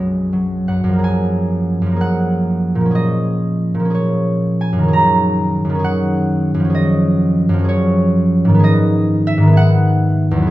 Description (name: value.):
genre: classical, solo harp piece.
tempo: 54-68 BPM (dotted quarters).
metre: 6/8.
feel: rubato.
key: Gb major.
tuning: A4 = 440 Hz.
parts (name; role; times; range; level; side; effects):
concert harp; solo; 0.0-10.5 s; B1 to B5; -13 LUFS; equal; none.
room: wet recital hall reverb, RT60 1.5 s.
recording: dark, warm production.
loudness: -13 LUFS.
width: side -16 dB against mid.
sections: 0.0-1.0 A section; 1.0-10.5 B section.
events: none.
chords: 0.0 B5; 1.0 Gbmaj9; 3.0 Bbm7; 6.8 Ebm11/Gb; 8.6 G#m7.